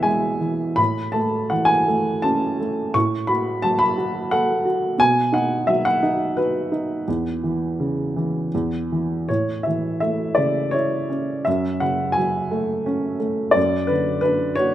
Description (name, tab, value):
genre	classical, lyrical solo piano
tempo	79-90 BPM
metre	3/4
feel	rubato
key	A major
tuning	A4 = 440 Hz
part	dark upright piano	solo	0.0-14.7 s	E2 to C#6	-19 LUFS	equal	none
room	light reverb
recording	close, detailed microphones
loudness	-19 LUFS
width	side -12 dB against mid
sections	0.0-9.3 A section; 9.3-14.7 B section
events	none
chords	0.0 E; 0.8 A; 2.9 A69; 5.0 B; 7.1 C#m7/E; 8.5 N.C.; 9.3 A; 11.5 F#madd9; 13.6 Bmadd9/F#